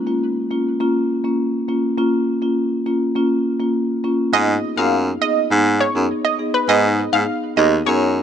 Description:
dancehall; 102 BPM; 4/4; straight; A4 = 440 Hz
marimba with medium mallets; accompaniment; 0.0-8.0 s; Bb3 to Ab4; -19 LUFS; left 1 dB
analog pluck; melody; 4.3-8.0 s; Cb5 to F5; -19 LUFS; right 3 dB; chorus, ping-pong delay
breathy baritone saxophone; bass; 4.3-8.2 s; Eb2 to Ab2; -17 LUFS; equal
light reverb, small room ambience; -16 LUFS; side -8 dB against mid
0.0-4.3 A section; 4.3-8.2 B section
0.0 Bbm; 4.3 Abm
0.22 0.80 1.39 | 1.98 2.57 3.16 3.75 | 4.33 4.92 5.51 6.10 | 6.69 7.28 7.86

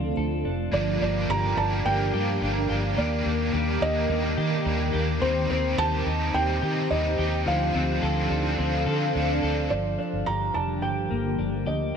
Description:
dream pop; 107 BPM; 4/4; straight; G minor; A4 = 440 Hz
felt-muted upright piano; melody; 0.0-12.0 s; C5 to Bb5; -29 LUFS; right 2 dB; tape echo
shimmering ambient pad; sustained chords; 0.0-12.0 s; C3 to G5; -30 LUFS; right 1 dB; chorus, built-in reverb, phaser
clean electric guitar; arpeggios; 0.0-12.0 s; F3 to A4; -30 LUFS; left 3 dB; lush chorus, tape echo
vintage muted fingered electric bass; bass; 0.0-11.9 s; F1 to Eb3; -28 LUFS; equal
vibraphone with medium mallets; texture; 0.0-9.9 s; G4 to D5; -42 LUFS; right 3 dB
cranked stack guitar; accompaniment; 0.7-9.7 s; G2 to A4; -31 LUFS; right 2 dB; overdrive, tremolo, analog chorus
moderate plate reverb, RT60 3.7 s; -23 LUFS; side -7 dB against mid
0.7-9.7 A section; 9.7-12.0 B section
0.0 Dm7; 0.7 Gm7; 3.0 Ebmaj7; 5.2 Cm/Eb; 7.5 Dm7; 9.7 Gm7
0.17 | 0.73 1.29 1.85 2.41 | 2.98 3.54 4.10 4.66 | 5.22 5.78 6.34 6.90 | 7.46 8.02 8.58 9.14 | 9.70 10.27 10.82 11.39 | 11.95

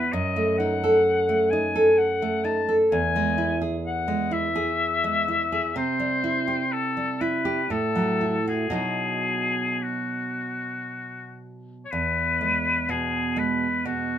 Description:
romantic duo for oboe and classical guitar; 56-65 BPM; 3/4; rubato; E major; A4 = 441 Hz
clear oboe; melody; 0.0-14.2 s; F#4 to A5; -26 LUFS; left 4 dB
nylon-string guitar; accompaniment; 0.0-14.2 s; E2 to A4; -24 LUFS; right 1 dB
light reverb; minimal, uncompressed stereo recording; -22 LUFS; side -10 dB against mid
0.0-11.9 A section; 11.9-14.2 A section
0.1 D#dim/F#; 2.9 E; 5.8 C; 7.7 F#m9/A; 8.8 B; 11.9 E
| 0.12 1.05 1.98 | 2.92 3.85 4.80 | 5.76 6.72 7.71 | 8.75 9.82 10.88 | 11.92 12.89 13.85

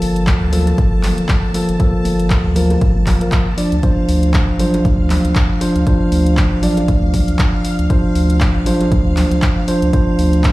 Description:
deep house; 118 BPM; 4/4; swing 57% on 16ths; A4 = 441 Hz
mellow tine electric piano; stabs; 0.0-10.5 s; F3 to D5; -17 LUFS; equal; vintage 12-bit sampler grit, sidechain pumping, low-pass filter, ping-pong delay
round analog bass; bass; 0.0-10.5 s; G1 to D2; -18 LUFS; equal; sidechain pumping
punchy analog drum machine; drums; 0.0-10.5 s; handclaps, hi-hat; -25 LUFS; equal
string machine, violins; texture; 0.0-10.5 s; F5 to A5; -31 LUFS; left 1 dB; ensemble chorus, sidechain pumping
electronic kick drum; drums; 0.3-10.5 s; -16 LUFS; equal
congas and bongos; percussion; 0.5-10.3 s; -28 LUFS; right 2 dB
digital ambience; played on a big sound system in a bare room, large studio reverb; -12 LUFS; side -18 dB against mid
0.0-10.5 A section
0.0 Gm9; 3.6 Dm7
0.27 0.78 1.29 | 1.80 2.31 2.81 3.32 | 3.83 4.34 4.85 5.36 | 5.87 6.37 6.88 7.39 | 7.90 8.41 8.92 9.43 | 9.93 10.44

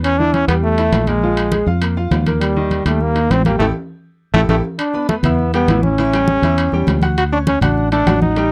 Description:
latin, salsa; 202 BPM; 4/4; straight; D major; A4 = 440 Hz
brilliant trombone; melody; 0.0-8.5 s; G3 to F#4; -20 LUFS; equal
bright baby grand piano; accompaniment; 0.0-8.5 s; Eb3 to F#6; -24 LUFS; equal
fingered electric bass; bass; 0.0-8.5 s; A1 to F2; -20 LUFS; equal
congas; percussion; 0.0-8.5 s; -23 LUFS; equal
timbales; percussion; 0.0-8.5 s; -28 LUFS; equal
little or no reverb; dry, close 1970s-style studio recording; -16 LUFS; mono
0.0-4.8 A section; 4.8-8.5 B section
band accent 3.6-4.8; drum fill 4.3-4.8
0.0 Em; 1.2 Bb5; 2.4 Eb; 3.6 A5; 4.8 Em7; 6.0 A7; 7.2 Dmaj7
| 0.04 0.34 0.63 0.93 | 1.23 1.52 1.82 2.12 | 2.41 2.71 3.01 3.30 | 3.60 3.90 4.20 4.49 | 4.79 5.09 5.38 5.68 | 5.98 6.28 6.58 6.87 | 7.17 7.47 7.77 8.06 | 8.36

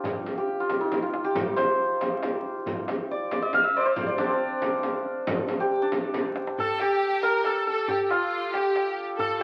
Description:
Persian modal ensemble; 92 BPM (dotted quarters); 6/8; straight; A4 = 440 Hz
santur; melody; 0.0-9.4 s; C4 to F5; -28 LUFS; equal
frame drum; percussion; 0.0-6.2 s; -33 LUFS; equal
tombak; percussion; 0.0-9.4 s; -42 LUFS; equal
clear studio violin section; second line; 6.6-9.4 s; F4 to Bb4; -32 LUFS; equal
wet studio reverb, RT60 0.6 s; very old 78 rpm record, vinyl crackle; -26 LUFS; mono
0.0-6.6 A section; 6.6-9.4 B section
drum fill 0.9-1.4, 6.1-6.6
| 0.05 0.70 | 1.36 2.01 | 2.66 3.32 | 3.97 4.62 | 5.27 5.93 | 6.58 7.23 | 7.88 8.54 | 9.19

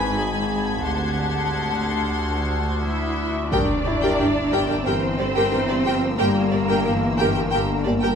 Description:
cinematic, suspense film score; 90 BPM; 4/4; straight; G dorian from 3.5 s; A4 = 439 Hz
warm symphonic violin section; melody; 0.0-8.2 s; D5 to C6; -29 LUFS; left 1 dB
bright clarinet; second line; 0.0-2.8 s; G4 to Cb5; -34 LUFS; equal
warm symphonic violin section; second line; 0.0-7.8 s; Bb4 to A5; -29 LUFS; left 3 dB
rich studio viola section; accompaniment; 0.0-8.2 s; Eb4 to F#5; -27 LUFS; right 1 dB
rich symphonic double bass section; bass; 0.0-8.1 s; Ab1 to G2; -30 LUFS; right 3 dB
warm studio cello section; bass; 0.0-7.8 s; D2 to E4; -26 LUFS; right 2 dB
overtone-sweeping drone; drone; 0.0-8.2 s; G1 to D2; -27 LUFS; left 1 dB; chorus, built-in reverb
bright baby grand piano; texture; 0.0-8.2 s; E4 to Cb6; -35 LUFS; left 2 dB
warm symphonic violin section; texture; 0.0-8.2 s; A5 to Ab6; -36 LUFS; left 1 dB
impact; sound effects; 3.5-6.2 s; -30 LUFS; equal
mellow French horn section; sustained chords; 4.9-8.2 s; D3 to Bb3; -25 LUFS; left 4 dB
moderate scoring stage reverb, RT60 1.9 s; close, detailed microphones; -19 LUFS; side -7 dB against mid
0.0-3.5 A section; 3.5-8.2 B section
impact 3.5-6.2
0.0 Abm; 0.9 D7; 3.5 Gm
0.19 | 0.86 1.52 2.19 2.86 | 3.52 4.19 4.86 5.52 | 6.19 6.86 7.52

